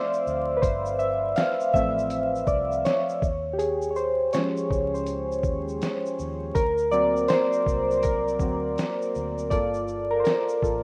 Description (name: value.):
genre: lo-fi hip hop.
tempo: 81 BPM.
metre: 4/4.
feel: swing 64% on 16ths.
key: unclear.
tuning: A4 = 440 Hz.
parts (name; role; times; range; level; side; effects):
warm analog keys; accompaniment; 0.0-10.8 s; F3 to F5; -26 LUFS; equal; chorus, low-pass filter.
lo-fi sampler-style drum kit; drums; 0.1-10.8 s; hi-hat, kick drum, shaker, snare drum; -32 LUFS; equal; vintage 12-bit sampler grit.
vintage muted fingered electric bass; bass; 0.3-10.8 s; G1 to Eb2; -38 LUFS; equal; none.
room: moderate plate reverb, RT60 2.4 s.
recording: rough home demo mix, vinyl crackle.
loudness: -25 LUFS.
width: mono.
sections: 0.0-9.5 A section; 9.5-10.8 B section.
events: synth keys solo 0.0-9.5, 9.5-10.8.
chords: 0.0 G9sus4; 3.2 Eb9sus4; 6.6 Daug7; 9.5 Gm9.